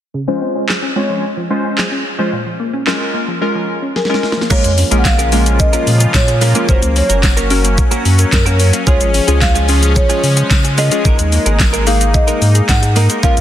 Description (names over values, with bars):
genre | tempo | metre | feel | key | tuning
dance-pop | 110 BPM | 4/4 | straight | Db major | A4 = 440 Hz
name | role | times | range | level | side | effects
hollow square pluck | arpeggios | 0.1-13.4 s | Bb2 to Gb5 | -24 LUFS | left 2 dB | chorus, sidechain pumping, low-pass filter, ping-pong delay
warm analog keys | accompaniment | 0.3-13.4 s | Ab3 to Db5 | -19 LUFS | left 1 dB | chorus, sidechain pumping, low-pass filter
pop drum kit | drums | 0.7-13.4 s | crash cymbal, handclaps, hi-hat, kick drum, shaker, snare drum | -15 LUFS | equal | none
marimba with medium mallets | melody | 4.0-13.4 s | Bb4 to Gb5 | -20 LUFS | equal | ping-pong delay
sweeping resonant pad | sustained chords | 4.5-13.4 s | Db3 to F4 | -21 LUFS | left 1 dB | chorus, sidechain pumping
direct-recorded clean electric guitar | riff | 4.5-13.4 s | Ab3 to Bb4 | -23 LUFS | right 5 dB | analog chorus
warm sub bass | bass | 4.5-13.4 s | Gb1 to Db3 | -14 LUFS | equal | sidechain pumping
tambourine | percussion | 5.1-12.8 s | none | -29 LUFS | left 10 dB | none
room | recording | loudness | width
light reverb, digital ambience | dense, heavily limited modern master | -11 LUFS | side -11 dB against mid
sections
0.1-4.5 A section; 4.5-13.4 B section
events
filter sweep 0.1-4.5; drum fill 4.0-4.5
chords
0.1 Dbmaj7; 2.3 Bbm7; 6.7 Gb; 8.9 Db; 11.1 Absus2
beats
| 0.14 0.69 1.23 1.78 | 2.32 2.87 3.42 3.96 | 4.51 5.05 5.60 6.14 | 6.69 7.23 7.78 8.32 | 8.87 9.41 9.96 10.51 | 11.05 11.60 12.14 12.69 | 13.23